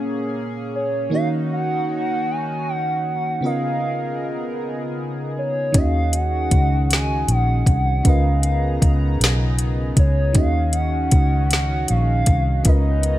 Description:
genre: slow six-eight R&B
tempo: 52 BPM (dotted quarters)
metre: 6/8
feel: straight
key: Eb minor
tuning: A4 = 442 Hz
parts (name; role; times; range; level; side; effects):
- FM electric piano; accompaniment; 0.0-13.2 s; Bb2 to Eb5; -25 LUFS; right 1 dB; chorus
- chorused pulse-width pad; sustained chords; 0.0-13.2 s; Db3 to Bb5; -30 LUFS; left 1 dB; none
- gliding portamento lead; melody; 0.8-13.2 s; Db5 to Ab5; -25 LUFS; equal; chorus
- smooth R&B drum kit; drums; 5.7-13.2 s; hi-hat, kick drum, snare drum; -17 LUFS; equal; none
- vintage muted fingered electric bass; bass; 5.8-13.2 s; Bb1 to Eb2; -19 LUFS; equal; none
room: digital ambience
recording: none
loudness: -17 LUFS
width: side -14 dB against mid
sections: 0.0-13.2 A section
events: drum fill 12.7-13.2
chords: 0.0 Bbm7; 1.1 Ebm7; 3.4 Db13; 5.7 Ebm7; 8.0 Db13; 10.4 Ebm9; 12.7 Db13

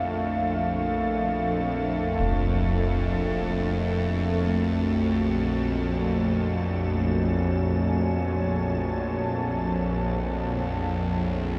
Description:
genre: dark ambient drone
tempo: free time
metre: none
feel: none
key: unclear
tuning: A4 = 445 Hz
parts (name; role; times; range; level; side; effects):
- dark analog pad; sustained chords; 0.0-11.6 s; D4 to A5; -33 LUFS; equal; chorus, shimmer reverb
- bowed-like drone; drone; 0.0-11.6 s; Bb1 to F2; -28 LUFS; equal; built-in reverb
- icy glass pad; texture; 0.0-11.6 s; A3 to A4; -36 LUFS; equal; chorus, built-in reverb, shimmer reverb
- concert bass drum; percussion; 2.2-2.4 s; none; -34 LUFS; equal; low-pass filter on kick
- gamelan-type bronze metallophone; arpeggios; 4.5-11.3 s; A3; -34 LUFS; equal; tape echo
room: wet huge ambient reverb, RT60 7.7 s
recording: dark, warm production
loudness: -26 LUFS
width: mono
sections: 0.0-11.6 A section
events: fade-in on drum 0.0-11.6; fade-out on analog synth pad 0.0-11.6; fade-out on ambient pad 0.0-11.6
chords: 0.0 Dm; 4.5 Gbm

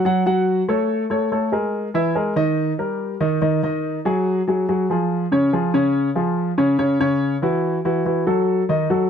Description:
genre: jazz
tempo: 142 BPM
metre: 4/4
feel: straight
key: unclear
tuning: A4 = 440 Hz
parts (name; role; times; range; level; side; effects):
- warm grand piano; solo; 0.1-9.1 s; C#3 to F#5; -18 LUFS; equal; none
room: little or no reverb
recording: close, detailed microphones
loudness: -18 LUFS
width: side -8 dB against mid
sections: 0.0-9.1 A section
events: none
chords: 0.0 F#madd9; 1.7 Emaj7#11; 2.6 D#; 3.4 G#5; 5.1 C#; 6.8 F#m7; 8.5 D (rootless)

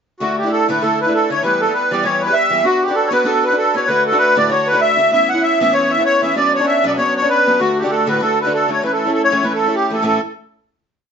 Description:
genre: celtic folk, Celtic reel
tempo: 195 BPM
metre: 4/4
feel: swing 57% on 8ths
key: A mixolydian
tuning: A4 = 440 Hz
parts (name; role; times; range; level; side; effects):
- accordion; melody; 0.2-10.2 s; F#4 to F#5; -14 LUFS; equal; light tremolo tuning, slapback echo
- picked steel-string acoustic guitar; accompaniment; 0.2-10.2 s; D2 to B4; -20 LUFS; equal; none
room: moderate studio reverb, RT60 0.6 s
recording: nothing above 7.5 kHz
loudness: -13 LUFS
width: side -7 dB against mid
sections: 0.2-10.0 A section; 10.0-11.1 final chord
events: none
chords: 0.2 Asus4; 1.4 Em; 2.6 Bm; 3.9 D; 5.1 Aadd9 (rootless); 6.4 Bmadd9; 7.6 D; 8.8 A

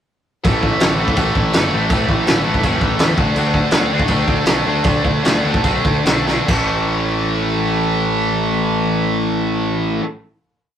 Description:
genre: punk rock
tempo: 139-165 BPM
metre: 4/4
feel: straight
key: unclear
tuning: A4 = 440 Hz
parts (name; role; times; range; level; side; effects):
- tight distorted guitar; riff; 0.4-10.0 s; A2 to D4; -18 LUFS; equal; distortion
- loose indie drum kit; drums; 0.4-6.6 s; crash cymbal, kick drum, snare drum; -17 LUFS; equal; none
- fuzz picked electric bass; bass; 0.5-10.0 s; F#1 to D3; -22 LUFS; equal; overdrive
room: light reverb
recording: rough rehearsal-room recording, warm saturation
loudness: -14 LUFS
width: side -9 dB against mid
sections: 0.5-6.5 riff; 6.5-9.9 final chord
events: slowing down 3.4-6.5; drum fill 6.3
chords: 0.5 A5; 3.2 D5; 6.5 A5

